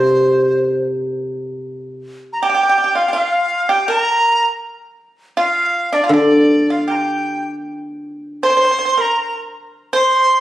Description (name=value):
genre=chinese traditional, Chinese chamber ensemble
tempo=79 BPM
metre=2/4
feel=rubato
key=C shang mode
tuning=A4 = 440 Hz
part: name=bright reedy dizi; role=melody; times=0.0-10.4 s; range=C5 to C6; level=-17 LUFS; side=equal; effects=none
part: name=guzheng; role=accompaniment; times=0.0-2.0, 6.1-8.4 s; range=C3 to G3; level=-16 LUFS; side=equal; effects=none
part: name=pipa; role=second line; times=2.4-10.4 s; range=D4 to C5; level=-18 LUFS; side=right 2 dB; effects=none
room=moderate recital hall reverb, RT60 1.4 s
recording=recorded on a phone in the room, studio reverb, compression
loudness=-14 LUFS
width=side -14 dB against mid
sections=0.0-1.6 A section; 1.6-10.4 B section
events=none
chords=none